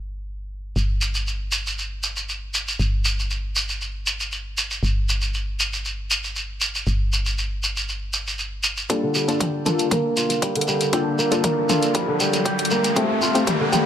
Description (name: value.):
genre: afro house.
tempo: 118 BPM.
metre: 4/4.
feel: straight.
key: G minor.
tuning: A4 = 440 Hz.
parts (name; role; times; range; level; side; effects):
woody FM bass; bass; 0.0-13.9 s; F1 to G2; -27 LUFS; equal; sidechain pumping, high-pass filter.
shekere; percussion; 0.8-13.8 s; none; -24 LUFS; right 1 dB; none.
kora; arpeggios; 8.9-13.9 s; D3 to G4; -22 LUFS; right 1 dB; sidechain pumping, low-pass filter, digital delay.
deep mellow chord stab; stabs; 8.9-13.9 s; A3 to A4; -24 LUFS; left 3 dB; analog chorus, sidechain pumping, digital delay.
electronic kick drum; drums; 8.9-13.6 s; none; -26 LUFS; equal; high-pass filter on kick.
house drum kit; drums; 8.9-13.8 s; hi-hat, toms; -26 LUFS; left 1 dB; low-pass filter on hats, low-pass filter on toms.
riser; sound effects; 10.2-13.9 s; none; -28 LUFS; left 1 dB; none.
room: light reverb.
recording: none.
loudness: -20 LUFS.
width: side -10 dB against mid.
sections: 0.0-8.9 A section; 8.9-13.9 B section.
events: build-up 8.9-13.9; filter sweep on kora 8.9-13.9; riser 10.2-13.9.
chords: 0.0 N.C.; 8.9 Gm7; 13.0 Fadd9.